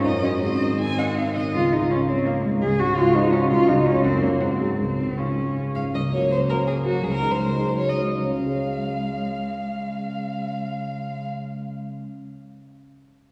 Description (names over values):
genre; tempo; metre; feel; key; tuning
quick classical-period movement for piano trio; 145-172 BPM; 3/4; rubato; Db major; A4 = 437 Hz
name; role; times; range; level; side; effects
warm violin; melody; 0.0-11.3 s; Gb4 to Ab5; -31 LUFS; equal; none
dark cello; second line; 0.0-11.3 s; Ab3 to Ab4; -27 LUFS; equal; none
warm concert grand piano; accompaniment; 0.0-12.2 s; Db2 to Eb5; -26 LUFS; equal; none
room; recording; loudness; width
wet church reverb, RT60 2.9 s; heard from further back in the room, small room ambience; -23 LUFS; mono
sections
0.0-5.9 A section; 5.9-8.2 B section; 8.2-10.5 C section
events
slowing down 5.4-8.2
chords
0.0 Ebm/Gb; 0.4 Ab; 1.5 Db; 2.6 Ab7/Db; 3.7 Db; 4.0 Gb; 4.4 Ab7; 4.8 Db; 5.9 Gb/Db; 7.0 Ab7/Db; 8.2 Db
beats
0.04 | 0.42 0.80 1.17 | 1.55 1.91 2.27 | 2.63 2.98 3.33 | 3.69 4.04 4.41 | 4.79 5.18 5.56 | 5.95 6.31 6.67 | 7.03 7.39 7.78 | 8.18 8.57 8.96 | 9.35 9.74 10.13